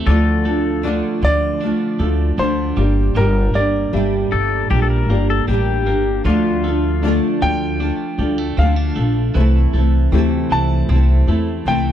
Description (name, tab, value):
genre	pop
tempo	78 BPM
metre	4/4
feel	straight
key	D minor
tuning	A4 = 440 Hz
part	dark upright piano	accompaniment	0.0-11.9 s	A3 to E5	-27 LUFS	left 3 dB	none
part	nylon-string guitar	accompaniment	0.0-11.9 s	C3 to Bb4	-20 LUFS	equal	double-tracked left and right
part	twelve-string electric guitar	arpeggios	0.0-11.9 s	E3 to D4	-27 LUFS	right 7 dB	none
part	pedal steel guitar	second line	0.1-7.2 s	F4 to Bb4	-23 LUFS	left 7 dB	none
part	upright bass	bass	0.1-11.9 s	G1 to E2	-17 LUFS	equal	none
part	clear upright piano	melody	1.2-11.9 s	Bb4 to A5	-23 LUFS	left 1 dB	none
room	small room ambience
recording	dry, close 1970s-style studio recording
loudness	-15 LUFS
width	side -10 dB against mid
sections	0.0-11.9 A section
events	none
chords	0.1 Dm; 2.8 Gm; 6.3 Dm; 9.4 Am/C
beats	| 0.07 0.84 1.62 2.39 | 3.16 3.94 4.71 5.49 | 6.26 7.03 7.81 8.58 | 9.35 10.13 10.90 11.67